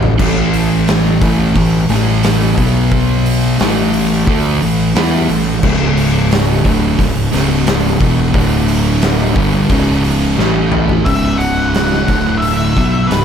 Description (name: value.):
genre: stoner and doom metal.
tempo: 88 BPM.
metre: 4/4.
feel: straight.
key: C# phrygian.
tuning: A4 = 440 Hz.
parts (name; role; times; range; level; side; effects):
thick fuzz guitar; riff; 0.0-13.2 s; C#2 to E4; -17 LUFS; left 9 dB; distortion.
thick fuzz guitar; riff; 0.0-13.2 s; C#2 to E4; -16 LUFS; right 8 dB; distortion.
fuzz fingered electric bass; bass; 0.0-13.2 s; C#1 to E2; -19 LUFS; left 1 dB; overdrive.
oversized low-tuned drum kit; drums; 0.0-13.2 s; crash cymbal, hi-hat, kick drum, snare drum, toms; -17 LUFS; equal; none.
octave-fuzz lead guitar; melody; 11.0-13.2 s; B4 to F#5; -18 LUFS; left 2 dB; wah, distortion, ping-pong delay.
room: light reverb.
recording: none.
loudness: -11 LUFS.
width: side -8 dB against mid.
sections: 0.0-11.1 A section; 11.1-13.2 B section.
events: drum fill 0.0, 10.4-11.1.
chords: 0.0 A5; 2.6 B5; 3.6 A5; 5.6 C#m; 8.4 D5; 9.4 C#5; 10.4 A5; 11.1 C#5; 12.1 D5.